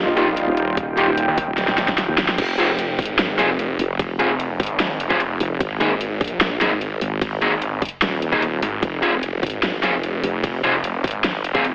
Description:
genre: heavy wobble dubstep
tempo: 149 BPM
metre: 4/4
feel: half-time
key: F minor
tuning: A4 = 441 Hz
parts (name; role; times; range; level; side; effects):
- supersaw pad; sustained chords; 0.0-2.4 s; G3 to F4; -24 LUFS; equal; sidechain pumping, low-pass filter
- wobble bass; bass; 0.0-10.6 s; Eb1 to Eb2; -22 LUFS; equal; chorus, overdrive
- deep dark ambient pad; texture; 0.4-2.4 s; G5; -27 LUFS; right 1 dB; chorus, built-in reverb, sidechain pumping
- snarling distorted saw bass; bass; 0.1-11.7 s; Eb1 to Eb2; -23 LUFS; equal; distortion, overdrive
- fuzz guitar; stabs; 0.2-11.6 s; Bb3 to Ab4; -22 LUFS; equal; distortion, dub echo
- dubstep drum kit; drums; 0.2-11.7 s; crash cymbal, hi-hat, ride cymbal, snare drum; -22 LUFS; equal; none
- electronic kick drum; drums; 0.8-11.6 s; none; -23 LUFS; equal; none
room: moderate digital room reverb, RT60 1.0 s, digital ambience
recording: telephone sound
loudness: -18 LUFS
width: side -22 dB against mid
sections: 0.0-2.4 A section; 2.4-11.7 A section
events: drop 0.0-2.4, 2.4-11.7; drum fill 1.6-2.4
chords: 0.0 Ebadd9; 2.4 Fm; 5.6 Absus2; 8.8 Fm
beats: 0.37 | 0.77 1.18 1.58 1.98 | 2.38 2.79 3.19 3.59 | 3.99 4.40 4.80 5.20 | 5.61 6.01 6.41 6.81 | 7.22 7.62 8.02 8.42 | 8.83 9.23 9.63 10.03 | 10.44 10.84 11.24 11.64

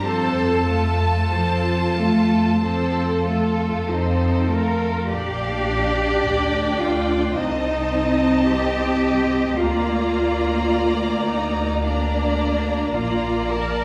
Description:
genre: classical, slow romantic movement for string orchestra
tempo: 46-56 BPM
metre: 4/4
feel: rubato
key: Bb major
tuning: A4 = 440 Hz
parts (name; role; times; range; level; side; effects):
- rich studio violin section; melody; 0.0-13.8 s; F5 to Bb5; -32 LUFS; equal; none
- rich studio violin section; second line; 0.0-13.8 s; F4 to Eb5; -29 LUFS; equal; none
- rich studio viola section; accompaniment; 0.0-13.8 s; F3 to D4; -26 LUFS; equal; none
- rich studio cello section; bass; 0.0-13.8 s; D4 to Bb4; -26 LUFS; equal; none
- rich studio double bass section; bass; 0.0-13.8 s; Bb1 to F2; -27 LUFS; equal; none
room: wet scoring stage reverb, RT60 1.7 s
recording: heard from further back in the room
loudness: -21 LUFS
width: mono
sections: 0.0-5.1 A section; 5.1-13.8 B section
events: none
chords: 0.0 F; 5.1 Bb; 7.4 Adim/C; 9.6 Bb/D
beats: | 0.03 1.32 2.61 3.88 | 5.09 6.24 7.37 8.48 | 9.59 10.71 11.83 12.95

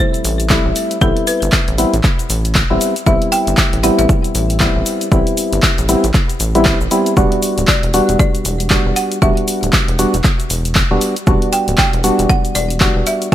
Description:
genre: deep house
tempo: 117 BPM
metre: 4/4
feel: swing 59% on 16ths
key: E minor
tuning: A4 = 440 Hz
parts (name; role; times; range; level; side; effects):
- folk marimba with hard mallets; melody; 0.0-13.3 s; A4 to G5; -21 LUFS; right 1 dB; ping-pong delay
- percussive organ stab; stabs; 0.0-13.3 s; G3 to F#4; -17 LUFS; equal; lush chorus, sidechain pumping, ping-pong delay
- punchy analog drum machine; drums; 0.1-13.3 s; handclaps, hi-hat, shaker; -19 LUFS; left 1 dB; none
- rubbery square bass; bass; 0.2-13.3 s; D1 to A1; -19 LUFS; equal; tube saturation
- electronic kick drum; drums; 0.5-13.3 s; none; -15 LUFS; equal; none
room: light reverb, digital ambience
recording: vinyl crackle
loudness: -12 LUFS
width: side -12 dB against mid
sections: 0.0-13.3 A section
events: none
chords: 0.0 Am9; 7.2 Em9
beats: 0.50 | 1.01 1.53 2.04 2.55 | 3.07 3.58 4.09 4.60 | 5.12 5.63 6.14 6.66 | 7.17 7.68 8.19 8.71 | 9.22 9.73 10.24 10.76 | 11.27 11.78 12.30 12.81 | 13.32

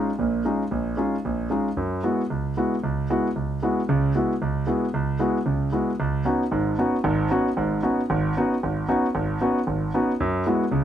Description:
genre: jazz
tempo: 228 BPM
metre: 4/4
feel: swing 60% on 8ths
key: unclear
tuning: A4 = 438 Hz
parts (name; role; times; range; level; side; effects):
- warm concert grand piano; solo; 0.0-10.8 s; G#1 to Gb4; -21 LUFS; equal; none
room: light reverb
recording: close, detailed microphones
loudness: -21 LUFS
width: side -10 dB against mid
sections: 0.0-6.0 A section; 6.0-10.8 B section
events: none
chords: 0.0 Eb9sus4; 1.8 Gb9sus4; 6.0 C#9sus4; 10.2 F#9sus4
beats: 0.19 0.45 | 0.71 0.98 1.24 1.51 | 1.77 2.04 2.30 2.56 | 2.83 3.09 3.35 3.62 | 3.88 4.15 4.41 4.67 | 4.94 5.20 5.46 5.73 | 5.99 6.25 6.52 6.78 | 7.04 7.31 7.57 7.83 | 8.09 8.36 8.62 8.88 | 9.14 9.41 9.67 9.93 | 10.19 10.46 10.72

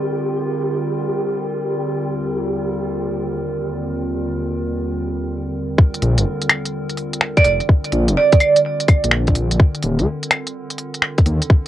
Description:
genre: future garage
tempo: 126 BPM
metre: 4/4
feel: swing 67% on 16ths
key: unclear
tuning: A4 = 440 Hz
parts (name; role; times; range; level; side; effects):
- warbly tape-like pad; sustained chords; 0.0-11.7 s; Eb2 to Bb4; -24 LUFS; equal; chorus, built-in reverb, sidechain pumping
- flickering grainy texture; texture; 0.0-5.3 s; G4; -26 LUFS; right 1 dB; built-in reverb
- electronic kick drum; drums; 5.8-11.6 s; none; -12 LUFS; equal; none
- organic electronic drum kit; drums; 5.9-11.7 s; claves, finger snaps, hi-hat; -18 LUFS; left 1 dB; low-pass filter on hats, low-pass filter on perc, low-pass filter on snare
- dark detuned saw bass; bass; 6.0-11.4 s; Eb1 to Eb2; -17 LUFS; equal; sidechain pumping
- vibraphone with hard mallets; melody; 7.4-8.6 s; D5; -16 LUFS; right 5 dB; vintage 12-bit sampler grit, cassette tape, analog delay
room: moderate booth ambience, RT60 0.2 s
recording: home recording on cassette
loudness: -16 LUFS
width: side -13 dB against mid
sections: 0.0-5.8 A section; 5.8-11.7 B section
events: none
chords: 0.0 Bb; 2.0 Ebmaj7; 5.8 Bb; 9.6 Ebmaj7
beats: | 0.07 0.55 1.02 1.50 | 1.97 2.45 2.93 3.40 | 3.88 4.36 4.83 5.31 | 5.78 6.26 6.74 7.21 | 7.69 8.16 8.64 9.12 | 9.59 10.07 10.54 11.02 | 11.50

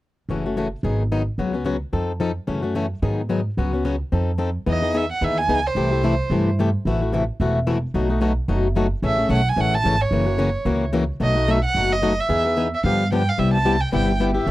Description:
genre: acoustic string swing (jazz manouche)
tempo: 220 BPM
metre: 4/4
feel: swing 56% on 8ths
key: E major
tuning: A4 = 442 Hz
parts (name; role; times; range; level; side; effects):
- picked plugged-in swing-style acoustic guitar; accompaniment; 0.3-14.5 s; B2 to A4; -22 LUFS; left 3 dB; none
- upright bass; bass; 0.3-14.5 s; E1 to G#2; -23 LUFS; right 1 dB; none
- warm violin; melody; 4.7-6.5, 9.1-14.5 s; C5 to A5; -23 LUFS; right 3 dB; none
room: little or no reverb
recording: dry, close 1970s-style studio recording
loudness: -19 LUFS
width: side -16 dB against mid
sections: 0.3-4.7 A section; 4.7-13.4 B section; 13.4-14.5 C section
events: none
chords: 0.3 F#m7; 0.8 G#m7; 1.4 C#7sus4; 1.9 F7; 2.5 F#m7; 3.0 G#m7; 3.6 C#7sus4; 4.1 F7; 4.7 Emaj7; 5.8 C6; 6.9 Am6; 7.9 B7; 9.0 Amaj7; 10.1 F#7; 11.2 B7; 12.3 Emaj7; 12.8 G7; 13.4 Cmaj7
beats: | 0.29 0.56 0.84 1.11 | 1.39 1.66 1.93 2.21 | 2.48 2.75 3.03 3.30 | 3.58 3.85 4.12 4.39 | 4.67 4.94 5.21 5.49 | 5.76 6.03 6.31 6.58 | 6.85 7.12 7.40 7.67 | 7.94 8.21 8.49 8.76 | 9.03 9.30 9.58 9.85 | 10.12 10.39 10.66 10.94 | 11.21 11.48 11.75 12.03 | 12.30 12.57 12.84 13.11 | 13.39 13.66 13.93 14.20 | 14.47

